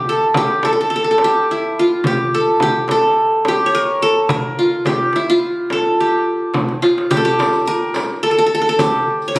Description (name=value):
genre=Turkish makam ensemble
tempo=106 BPM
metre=4/4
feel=straight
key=G makam nikriz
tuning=A4 = 441 Hz
part: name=qanun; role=melody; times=0.0-9.4 s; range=E4 to C#5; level=-14 LUFS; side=equal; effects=none
part: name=darbuka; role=percussion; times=0.2-9.4 s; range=none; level=-28 LUFS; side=equal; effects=none
part: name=frame drum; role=percussion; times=0.3-9.4 s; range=none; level=-23 LUFS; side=equal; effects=none
part: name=riq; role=percussion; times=7.1-9.4 s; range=none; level=-32 LUFS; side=right 1 dB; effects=none
room=moderate scoring stage reverb, RT60 1.9 s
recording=recorded on a phone in the room, club reverb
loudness=-13 LUFS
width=side -22 dB against mid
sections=0.0-7.1 A section; 7.1-9.4 B section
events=drum fill 6.5-7.1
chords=none